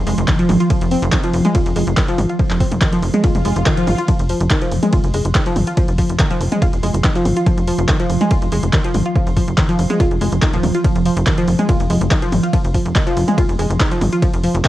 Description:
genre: driving peak-time techno.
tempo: 142 BPM.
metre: 4/4.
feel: straight.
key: F minor.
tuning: A4 = 440 Hz.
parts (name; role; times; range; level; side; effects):
tight sequencer bass; bass; 0.0-14.6 s; Eb1 to Ab1; -19 LUFS; equal; sidechain pumping.
swarming drone; drone; 0.0-14.7 s; F3; -24 LUFS; right 1 dB; built-in reverb, sidechain pumping, cassette tape.
analog pluck; riff; 0.1-14.7 s; Eb3 to F4; -20 LUFS; equal; chorus, phaser, sidechain pumping, cassette tape, analog delay.
punchy analog drum machine; drums; 0.1-14.7 s; handclaps, hi-hat, ride cymbal, toms; -23 LUFS; equal; overdrive, cassette tape.
electronic kick drum; drums; 0.3-14.7 s; none; -17 LUFS; equal; overdrive, cassette tape.
swell; sound effects; 3.4-4.1 s; none; -26 LUFS; equal; none.
room: light reverb, digital ambience.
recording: home recording on cassette, faint mains hum.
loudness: -14 LUFS.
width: side -15 dB against mid.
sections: 0.0-14.7 A section.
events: swell 3.4-4.1.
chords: 0.0 Fm.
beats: 0.28 | 0.70 1.13 1.55 1.97 | 2.39 2.82 3.24 3.66 | 4.08 4.51 4.93 5.35 | 5.77 6.20 6.62 7.04 | 7.46 7.89 8.31 8.73 | 9.15 9.58 10.00 10.42 | 10.84 11.27 11.69 12.11 | 12.53 12.96 13.38 13.80 | 14.22 14.65.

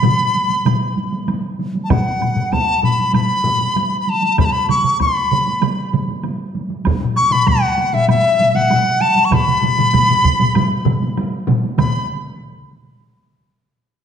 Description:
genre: japanese traditional, taiko drum ensemble.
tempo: 97 BPM.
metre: 4/4.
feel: straight.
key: B suspended pentatonic.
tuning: A4 = 445 Hz.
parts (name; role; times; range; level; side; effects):
bright reedy dizi; melody; 0.0-12.1 s; E5 to C#6; -16 LUFS; left 1 dB; none.
taiko ensemble; percussion; 0.0-12.1 s; none; -22 LUFS; right 2 dB; none.
taiko ensemble; percussion; 0.0-12.4 s; none; -20 LUFS; left 4 dB; none.
taiko ensemble; percussion; 0.0-12.4 s; none; -21 LUFS; right 6 dB; none.
woodblock; percussion; 0.0-12.1 s; none; -31 LUFS; right 6 dB; none.
taiko ensemble; percussion; 1.9-12.1 s; none; -21 LUFS; right 1 dB; none.
room: wet recital hall reverb, RT60 1.6 s.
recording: none.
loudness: -14 LUFS.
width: side -8 dB against mid.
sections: 0.0-11.8 A section; 11.8-14.0 B section.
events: none.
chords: none.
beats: 0.04 0.66 1.28 | 1.91 2.53 3.15 3.77 | 4.38 5.00 5.62 6.24 | 6.86 7.48 8.09 8.71 | 9.33 9.94 10.56 11.17 | 11.79.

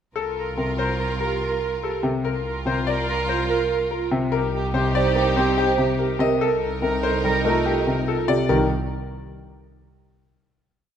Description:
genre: classical, minimalist pattern music.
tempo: 144 BPM.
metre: 5/4.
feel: straight.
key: C dorian.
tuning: A4 = 440 Hz.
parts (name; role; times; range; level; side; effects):
bright concert grand piano; melody; 0.2-8.7 s; G4 to Eb5; -27 LUFS; left 8 dB; none.
warm soprano saxophone; second line; 0.2-8.2 s; G4 to Bb4; -29 LUFS; right 2 dB; none.
rich studio string section; sustained chords; 0.2-8.2 s; Eb4 to Bb4; -29 LUFS; equal; none.
rich double bass; bass; 0.2-8.7 s; C2; -28 LUFS; right 2 dB; none.
warm grand piano; accompaniment; 0.6-8.7 s; C3 to C4; -26 LUFS; left 3 dB; none.
vibraphone with soft mallets; arpeggios; 1.2-8.7 s; Eb4 to C5; -25 LUFS; right 7 dB; none.
room: moderate scoring stage reverb, RT60 1.9 s.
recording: none.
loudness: -20 LUFS.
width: side -8 dB against mid.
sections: 0.2-8.5 A section; 8.5-10.6 final chord.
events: none.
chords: 0.2 Gm11/C; 2.2 Fsus4/C; 4.3 Eb/C; 6.4 Cm11; 8.5 Cm.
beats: | 0.16 0.58 0.99 1.41 1.83 | 2.24 2.66 3.08 3.49 3.91 | 4.33 4.74 5.16 5.58 5.99 | 6.41 6.83 7.24 7.66 8.08 | 8.49.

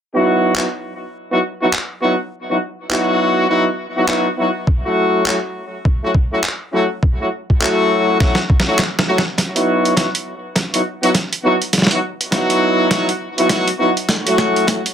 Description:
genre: glitch hop.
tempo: 102 BPM.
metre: 4/4.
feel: swing 60% on 16ths.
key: unclear.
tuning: A4 = 441 Hz.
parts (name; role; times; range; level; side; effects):
warm horn section; stabs; 0.1-14.8 s; F#3 to F#4; -16 LUFS; equal; sidechain pumping, low-pass filter, tape echo.
boom bap sampler-style drum kit; drums; 0.6-14.9 s; handclaps, hi-hat, snare drum; -18 LUFS; right 1 dB; soft clipping on snare.
electronic kick drum; drums; 4.7-14.8 s; none; -16 LUFS; equal; high-pass filter on kick.
room: wet small room reverb, RT60 0.5 s.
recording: dense, heavily limited modern master.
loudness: -14 LUFS.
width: side -8 dB against mid.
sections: 0.0-9.4 A section; 9.4-14.9 B section.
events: drum fill 8.2-9.4, 9.4-14.9; build-up 9.4-14.9; filter sweep on horn section 9.4-14.9.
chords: 0.0 Badd11; 4.7 F#m7; 9.4 Badd11; 14.1 F#m7.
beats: 0.56 1.15 1.74 | 2.32 2.91 3.50 4.09 | 4.68 5.26 5.85 6.44 | 7.03 7.62 8.21 8.79 | 9.38 9.97 10.56 11.15 | 11.73 12.32 12.91 13.50 | 14.09 14.68.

